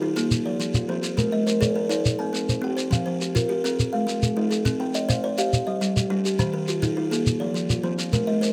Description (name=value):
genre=southern african traditional, mbira-style interlocking cycle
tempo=138 BPM (dotted quarters)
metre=12/8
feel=straight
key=F equiheptatonic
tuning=A4 = 441 Hz
part: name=buzzing kalimba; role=arpeggios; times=0.0-8.5 s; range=Eb3+29c to Ab5+43c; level=-28 LUFS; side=equal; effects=none
part: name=kalimba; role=arpeggios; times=0.0-8.5 s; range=Eb3+29c to G5-29c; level=-29 LUFS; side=equal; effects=slapback echo
part: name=shekere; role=percussion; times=0.2-8.5 s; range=none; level=-27 LUFS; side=equal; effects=none
room=little or no reverb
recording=close, detailed microphones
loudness=-24 LUFS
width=mono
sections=0.0-8.5 A section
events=none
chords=0.3 Fm; 1.2 Ab; 2.1 C5; 2.9 Fm; 3.8 Ab5; 4.7 Cm; 5.5 G5; 6.4 Eb; 7.3 Fm